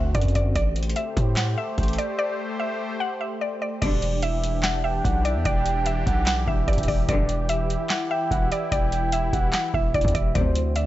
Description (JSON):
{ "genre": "hip hop, trap", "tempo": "147 BPM", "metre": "4/4", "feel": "half-time", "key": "E minor", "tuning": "A4 = 440 Hz", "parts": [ { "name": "mallet-like synth pluck", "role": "melody", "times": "0.0-10.9 s", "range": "D5 to F#5", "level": "-29 LUFS", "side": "left 1 dB", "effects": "chorus, low-pass filter, digital delay" }, { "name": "sweeping resonant pad", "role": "sustained chords", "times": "0.0-10.9 s", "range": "D3 to C5", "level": "-30 LUFS", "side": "left 1 dB", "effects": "chorus" }, { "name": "distorted 808-style bass", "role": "bass", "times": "0.0-10.9 s", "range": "E1 to A2", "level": "-25 LUFS", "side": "equal", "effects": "distortion" }, { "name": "booming analog drum machine", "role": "drums", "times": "0.1-10.9 s", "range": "crash cymbal, handclaps, hi-hat, kick drum, snare drum", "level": "-26 LUFS", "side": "equal", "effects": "none" }, { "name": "soft octave-layered synth lead", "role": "second line", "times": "3.8-10.9 s", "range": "C5 to G5", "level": "-28 LUFS", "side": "right 3 dB", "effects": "chorus, tremolo, digital delay" }, { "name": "muted studio string section", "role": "stabs", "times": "3.8-4.0, 7.1-7.3, 10.4-10.5 s", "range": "F#2 to D3", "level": "-29 LUFS", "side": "left 3 dB", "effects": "none" } ], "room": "little or no reverb", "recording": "nothing above 7.8 kHz", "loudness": "-21 LUFS", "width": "side -14 dB against mid", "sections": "0.0-3.8 A section; 3.8-10.9 B section", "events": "break 2.2-3.8", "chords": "0.0 D7; 0.6 Am7; 3.8 Em7; 10.4 D7", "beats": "0.15 | 0.56 0.96 1.37 1.78 | 2.19 2.60 3.00 3.41 | 3.82 4.23 4.64 5.04 | 5.45 5.86 6.27 6.68 | 7.09 7.49 7.90 8.31 | 8.72 9.13 9.54 9.94 | 10.35 10.76" }